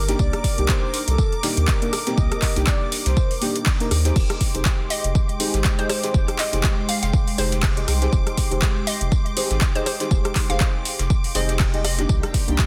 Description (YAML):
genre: deep house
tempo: 121 BPM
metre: 4/4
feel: swing 56% on 16ths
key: F dorian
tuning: A4 = 440 Hz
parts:
  - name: warm analog pad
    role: sustained chords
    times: 0.0-12.7 s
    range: Ab3 to D6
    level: -35 LUFS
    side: equal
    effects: chorus, vintage 12-bit sampler grit, sidechain pumping
  - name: warm sub bass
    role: bass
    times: 0.0-12.6 s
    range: F1 to Eb2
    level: -25 LUFS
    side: equal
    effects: sidechain pumping
  - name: string machine, violins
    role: texture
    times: 0.0-12.7 s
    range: G4 to D6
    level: -38 LUFS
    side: equal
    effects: ensemble chorus
  - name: deep mellow chord stab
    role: stabs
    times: 0.1-12.7 s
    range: Bb3 to Eb5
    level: -30 LUFS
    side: equal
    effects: chorus, phaser, sidechain pumping, tape echo
  - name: deep house drum kit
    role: drums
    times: 0.1-12.7 s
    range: crash cymbal, handclaps, hi-hat, rim click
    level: -28 LUFS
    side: equal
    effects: overdrive, small room ambience
  - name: dusty soul sampler-style drum kit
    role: drums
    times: 0.1-12.7 s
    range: hi-hat, snare drum, tambourine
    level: -37 LUFS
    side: equal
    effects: sidechain pumping on perc, high-pass filter on perc, small room ambience, high-pass filter on snare, sidechain pumping on hats, high-pass filter on hats, high-pass filter on room
  - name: breathy flute-like synth lead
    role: melody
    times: 0.2-3.3 s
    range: A4 to Eb5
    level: -36 LUFS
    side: equal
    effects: lush chorus, analog delay
  - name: electronic kick drum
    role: drums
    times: 0.2-12.7 s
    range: none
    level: -23 LUFS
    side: equal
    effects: overdrive, small room ambience
  - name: hollow square pluck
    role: melody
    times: 4.9-12.1 s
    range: C5 to F5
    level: -33 LUFS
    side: equal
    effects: chorus, tape echo
room: light reverb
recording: dense, heavily limited modern master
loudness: -21 LUFS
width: mono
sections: 0.0-12.7 A section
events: none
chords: 0.0 Cm9; 4.2 Fm9; 12.1 Cm9